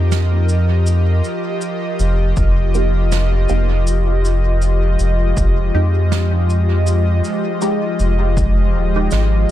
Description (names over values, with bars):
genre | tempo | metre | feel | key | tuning
ambient dub | 80 BPM | 4/4 | swing 57% on 16ths | F minor | A4 = 440 Hz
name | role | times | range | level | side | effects
airy breathy pad | sustained chords | 0.0-9.5 s | F3 to Eb5 | -20 LUFS | equal | chorus
round analog bass | bass | 0.0-9.5 s | Eb1 to F2 | -15 LUFS | equal | none
snare drum and cabasa | drums | 0.1-9.3 s | none | -28 LUFS | right 5 dB | dub echo
electronic kick drum | drums | 2.4-8.5 s | none | -19 LUFS | equal | overdrive
filtered dub chord stab | stabs | 2.7-9.5 s | Ab3 to G4 | -26 LUFS | right 2 dB | phaser, analog chorus, dub echo
room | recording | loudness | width
small room ambience | dark, warm production | -14 LUFS | side -13 dB against mid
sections
0.0-9.5 A section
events
none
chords
0.0 Eb; 3.9 Fm9